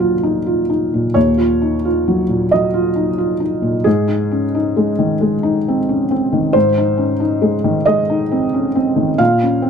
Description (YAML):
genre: neoclassical minimalist piano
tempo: 45 BPM (dotted quarters)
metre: 6/8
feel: rubato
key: unclear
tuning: A4 = 441 Hz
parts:
  - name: felt-muted upright piano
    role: solo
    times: 0.0-9.7 s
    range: Eb2 to F5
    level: -14 LUFS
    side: equal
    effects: none
room: light reverb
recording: dark, warm production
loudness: -14 LUFS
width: side -6 dB against mid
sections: 0.0-9.7 A section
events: none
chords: 0.0 Ebmadd9; 3.9 Ab; 9.2 Bbm